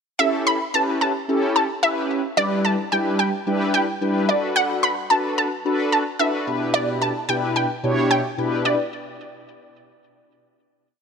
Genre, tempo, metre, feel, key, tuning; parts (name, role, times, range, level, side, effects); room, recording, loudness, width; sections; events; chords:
pop; 110 BPM; 4/4; straight; E dorian; A4 = 440 Hz
wide unison pluck; melody; 0.2-8.8 s; D5 to B5; -22 LUFS; right 1 dB; analog chorus, ping-pong delay
mellow synth brass; accompaniment; 0.2-8.8 s; B2 to C#5; -22 LUFS; left 1 dB; chorus
moderate lush hall reverb, RT60 2.7 s; -19 LUFS; side -6 dB against mid
0.2-8.9 verse
0.2 A7; 2.4 Em7/G; 4.3 Bm7; 6.5 Em7/B